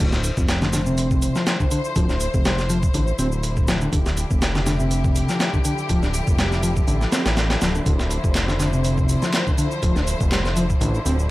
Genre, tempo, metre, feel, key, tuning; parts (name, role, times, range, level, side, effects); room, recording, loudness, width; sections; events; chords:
breakbeat, breaks; 122 BPM; 4/4; swing 54% on 16ths; D minor; A4 = 441 Hz
rich studio string section; sustained chords; 0.0-11.3 s; D3 to C5; -28 LUFS; left 1 dB; vintage 12-bit sampler grit, sidechain pumping
mellow electric guitar; riff; 0.0-11.1 s; C3 to D4; -24 LUFS; left 1 dB; tube saturation, dub echo
fat analog bass; bass; 0.0-11.3 s; D1 to A1; -23 LUFS; equal
breakbeat sampler-style drum kit; drums; 0.1-11.2 s; hi-hat, kick drum, snare drum; -22 LUFS; equal; small room ambience
electronic shaker and handclaps; drums; 0.1-11.3 s; -33 LUFS; equal; small room ambience
digital ambience; vinyl crackle; -18 LUFS; side -18 dB against mid
0.0-11.3 A section
0.0 Dm9